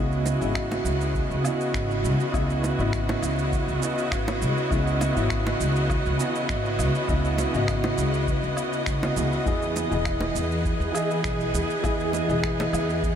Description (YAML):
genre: sunset chillout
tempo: 101 BPM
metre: 4/4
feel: straight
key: C# minor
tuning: A4 = 439 Hz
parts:
  - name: clear baby grand piano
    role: accompaniment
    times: 0.0-13.2 s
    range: C#3 to D#5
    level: -28 LUFS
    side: equal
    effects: auto-pan, low-pass filter, analog delay
  - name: rich studio string section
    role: sustained chords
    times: 0.0-13.2 s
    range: C#3 to D#5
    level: -28 LUFS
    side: equal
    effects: none
  - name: upright bass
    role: bass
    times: 0.0-13.1 s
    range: E1 to E2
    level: -27 LUFS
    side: equal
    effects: none
  - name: electronic shaker, finger snaps and woodblock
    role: drums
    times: 0.1-13.2 s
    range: none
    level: -35 LUFS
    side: right 1 dB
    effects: overdrive
  - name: bongos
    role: percussion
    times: 0.3-12.7 s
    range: none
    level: -37 LUFS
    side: right 1 dB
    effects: none
  - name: electronic kick drum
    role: drums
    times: 0.6-13.2 s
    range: none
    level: -30 LUFS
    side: equal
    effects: none
room: moderate huge ambient reverb, RT60 7.3 s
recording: dreamy mix soaked in reverb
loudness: -22 LUFS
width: side -8 dB against mid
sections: 0.0-13.2 A section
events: filter sweep on grand piano 0.0-13.2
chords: 0.0 C#m11; 9.5 Emaj7